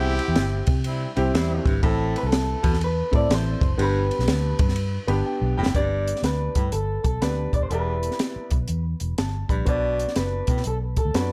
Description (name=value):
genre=uptempo 1960s-style soul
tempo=122 BPM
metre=4/4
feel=swing 65% on 8ths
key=G major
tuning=A4 = 440 Hz
part: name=electric guitar through a small old amp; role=melody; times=0.0-11.3 s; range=A4 to G5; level=-31 LUFS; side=equal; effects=analog delay
part: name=warm horn section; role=second line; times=0.0-1.7 s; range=G3 to G4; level=-32 LUFS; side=equal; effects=none
part: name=warm grand piano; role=accompaniment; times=0.0-11.3 s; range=B3 to B5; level=-32 LUFS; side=equal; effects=none
part: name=warm baritone saxophone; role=riff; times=0.0-10.6 s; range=E2 to B2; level=-34 LUFS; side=equal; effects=none
part: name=vintage muted fingered electric bass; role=bass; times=0.0-11.3 s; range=Eb1 to C3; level=-27 LUFS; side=equal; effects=none
part: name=compact cocktail drum kit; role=drums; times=0.2-11.3 s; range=hi-hat, kick drum, ride cymbal, snare drum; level=-27 LUFS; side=equal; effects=none
room=light reverb, small room ambience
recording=dark, warm production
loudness=-23 LUFS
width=mono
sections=0.0-5.8 A section; 5.8-11.3 B section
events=grand piano fill 4.8-5.8; drum fill 5.3-5.8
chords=0.0 C; 1.8 Am; 3.8 G; 7.7 Em7; 9.7 Bm